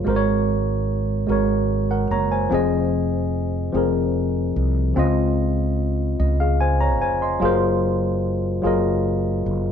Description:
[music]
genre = slow six-eight R&B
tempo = 49 BPM (dotted quarters)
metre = 6/8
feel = straight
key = Db major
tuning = A4 = 441 Hz
[part]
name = tine electric piano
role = accompaniment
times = 0.0-9.7 s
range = Db3 to C6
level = -20 LUFS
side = left 1 dB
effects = none
[part]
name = mellow fretless electric bass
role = bass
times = 0.0-9.7 s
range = F1 to Db2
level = -23 LUFS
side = right 1 dB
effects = none
[sound]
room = moderate stone room reverb, RT60 1.1 s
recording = band playing live in one room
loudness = -18 LUFS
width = side -8 dB against mid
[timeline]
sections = 0.0-9.7 A section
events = none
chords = 0.1 Ab9sus4; 2.5 Fm7; 5.0 Dbmaj9; 7.4 Gbmaj9#11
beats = | 0.06 1.28 | 2.50 3.73 | 4.95 6.18 | 7.40 8.63

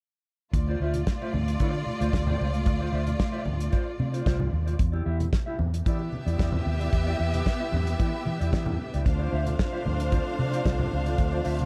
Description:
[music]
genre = disco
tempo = 113 BPM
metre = 4/4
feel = straight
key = D dorian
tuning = A4 = 442 Hz
[part]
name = clear symphonic string section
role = second line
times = 0.5-11.7 s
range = A3 to F5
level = -35 LUFS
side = equal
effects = none
[part]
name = mellow electric guitar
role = accompaniment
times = 0.5-11.6 s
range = E4 to E5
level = -38 LUFS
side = equal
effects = lush chorus
[part]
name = vintage muted fingered electric bass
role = bass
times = 0.5-11.7 s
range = C2 to E3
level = -30 LUFS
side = equal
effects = none
[part]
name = damped 70s drum kit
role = drums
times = 0.5-11.7 s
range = hi-hat, kick drum, snare drum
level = -29 LUFS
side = equal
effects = none
[part]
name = congas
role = percussion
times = 0.7-11.7 s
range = none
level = -38 LUFS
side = equal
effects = none
[part]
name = warm French horn section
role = sustained chords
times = 9.1-11.7 s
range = D3 to F4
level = -38 LUFS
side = equal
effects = none
[sound]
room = light reverb, small room ambience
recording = dark, warm production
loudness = -27 LUFS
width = mono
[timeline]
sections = 0.5-11.7 A section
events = none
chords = 0.5 Dm7; 4.8 Em7; 9.1 Dm7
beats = | 0.53 1.07 1.60 2.13 | 2.66 3.20 3.73 4.26 | 4.80 5.33 5.86 6.39 | 6.93 7.46 7.99 8.53 | 9.06 9.59 10.12 10.66 | 11.19

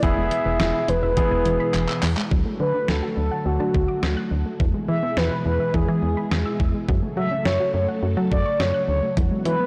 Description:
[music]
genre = synth-pop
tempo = 105 BPM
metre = 4/4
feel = straight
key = unclear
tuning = A4 = 440 Hz
[part]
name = mellow horn-like synth lead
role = melody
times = 0.0-9.7 s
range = F#4 to E5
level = -27 LUFS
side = equal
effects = chorus, slapback echo
[part]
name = clear concert grand piano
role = accompaniment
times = 0.0-2.0 s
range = B3 to G#4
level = -31 LUFS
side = equal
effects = none
[part]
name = string machine, cellos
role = sustained chords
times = 0.0-9.7 s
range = B2 to A4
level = -31 LUFS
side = equal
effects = ensemble chorus
[part]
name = soft round pluck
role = arpeggios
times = 0.0-9.7 s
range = E3 to F#6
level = -33 LUFS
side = equal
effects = chorus, phaser, slapback echo
[part]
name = solid FM bass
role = bass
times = 0.0-9.6 s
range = E1 to F#3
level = -26 LUFS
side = equal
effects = none
[part]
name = detuned 8-bit digital drum machine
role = drums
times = 0.0-9.6 s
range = handclaps, hi-hat, kick drum, snare drum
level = -28 LUFS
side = equal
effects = none
[sound]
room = moderate lush hall reverb, RT60 1.8 s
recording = blown-out, overdriven recording, overdrive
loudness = -22 LUFS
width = mono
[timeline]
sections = 0.0-2.3 A section; 2.3-9.7 B section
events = drum fill 1.7-2.3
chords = 0.0 E; 2.3 D; 4.6 E; 6.9 F#m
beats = | 0.03 0.60 1.17 1.74 | 2.31 2.88 3.46 4.03 | 4.60 5.17 5.74 6.31 | 6.88 7.46 8.03 8.60 | 9.17

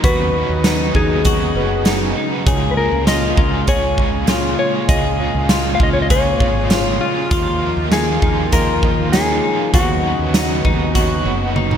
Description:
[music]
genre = dream pop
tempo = 99 BPM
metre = 4/4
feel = straight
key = Db mixolydian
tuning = A4 = 441 Hz
[part]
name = mellow electric guitar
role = melody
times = 0.0-11.8 s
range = F4 to F5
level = -21 LUFS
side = left 3 dB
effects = ping-pong delay
[part]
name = overdriven electric guitar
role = accompaniment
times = 0.0-11.8 s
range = Db3 to Ab4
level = -26 LUFS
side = right 4 dB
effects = tremolo, wide subtle chorus
[part]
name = lush unison pad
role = sustained chords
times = 0.0-11.8 s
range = Bb2 to F4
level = -23 LUFS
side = right 1 dB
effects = chorus
[part]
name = clean electric guitar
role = arpeggios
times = 0.0-11.8 s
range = Eb4 to Ab4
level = -23 LUFS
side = left 3 dB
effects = wide subtle chorus, ping-pong delay
[part]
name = woody fretless electric bass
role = bass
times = 0.0-11.8 s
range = Gb1 to Eb2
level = -21 LUFS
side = equal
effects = none
[part]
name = huge arena drum kit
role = drums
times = 0.0-11.8 s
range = hi-hat, kick drum, snare drum, tambourine, toms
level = -18 LUFS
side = right 1 dB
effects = none
[part]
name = celesta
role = texture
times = 1.6-10.0 s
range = Cb5 to F5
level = -33 LUFS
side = right 2 dB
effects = none
[sound]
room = moderate lush hall reverb, RT60 2.1 s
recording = bright 1980s-style digital production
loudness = -14 LUFS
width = side -8 dB against mid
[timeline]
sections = 0.0-11.8 A section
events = drum fill 11.6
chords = 0.0 Cbadd9/Eb; 2.5 Db6; 7.3 Ebsus2; 9.7 Cbadd9/Eb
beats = | 0.04 0.65 1.25 1.86 | 2.47 3.07 3.68 4.28 | 4.89 5.50 6.10 6.71 | 7.32 7.92 8.53 9.13 | 9.74 10.35 10.95 11.56

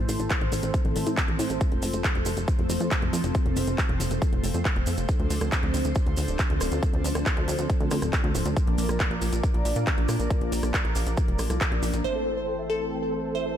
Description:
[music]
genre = uplifting trance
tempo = 138 BPM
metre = 4/4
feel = straight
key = D minor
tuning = A4 = 439 Hz
[part]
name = analog string pad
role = sustained chords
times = 0.0-13.6 s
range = E3 to D5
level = -30 LUFS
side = equal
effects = ensemble chorus, sidechain pumping
[part]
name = plucky analog bass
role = bass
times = 0.0-13.6 s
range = D1 to Bb2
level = -28 LUFS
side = equal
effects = sidechain pumping
[part]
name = big-room dance drum kit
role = drums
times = 0.1-12.1 s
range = crash cymbal, handclaps, hi-hat, rim click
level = -32 LUFS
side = equal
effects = sidechain pumping on hats, low-pass filter on hats, sidechain pumping on cymbals, low-pass filter on cymbals, low-pass filter on snare
[part]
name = maracas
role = percussion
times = 0.1-12.0 s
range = none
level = -39 LUFS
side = right 5 dB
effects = none
[part]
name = electronic kick drum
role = drums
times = 0.3-11.7 s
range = none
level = -25 LUFS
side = equal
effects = none
[part]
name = big supersaw lead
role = melody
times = 12.0-13.6 s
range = A4 to G5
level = -33 LUFS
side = right 1 dB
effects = sidechain pumping, low-pass filter, ping-pong delay
[part]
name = glassy wavetable pluck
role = second line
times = 12.0-13.6 s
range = A4 to C5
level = -29 LUFS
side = right 1 dB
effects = chorus, ping-pong delay
[sound]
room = light reverb, digital ambience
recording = none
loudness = -23 LUFS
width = side -10 dB against mid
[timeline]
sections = 0.0-12.0 A section; 12.0-13.6 B section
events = filter sweep on supersaw synth 12.0-13.6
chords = 0.0 Am; 1.6 F; 5.1 Dm7; 8.6 Bb; 12.0 Am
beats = 0.30 0.74 1.17 | 1.61 2.04 2.48 2.91 | 3.35 3.78 4.22 4.65 | 5.09 5.52 5.96 6.39 | 6.83 7.26 7.70 8.13 | 8.57 9.00 9.44 9.87 | 10.30 10.74 11.17 11.61 | 12.04 12.48 12.91 13.35

